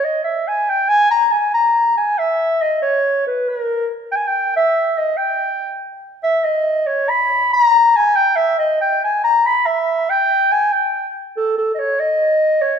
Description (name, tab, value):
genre	balkan folk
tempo	free time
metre	none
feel	none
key	unclear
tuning	A4 = 440 Hz
part	dark clarinet	solo	0.0-12.8 s	A4 to B5	-14 LUFS	equal	none
room	wet recital hall reverb, RT60 1.6 s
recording	none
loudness	-14 LUFS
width	side -7 dB against mid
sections	0.0-11.3 A section; 11.3-12.8 B section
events	clarinet solo 0.0-11.3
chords	none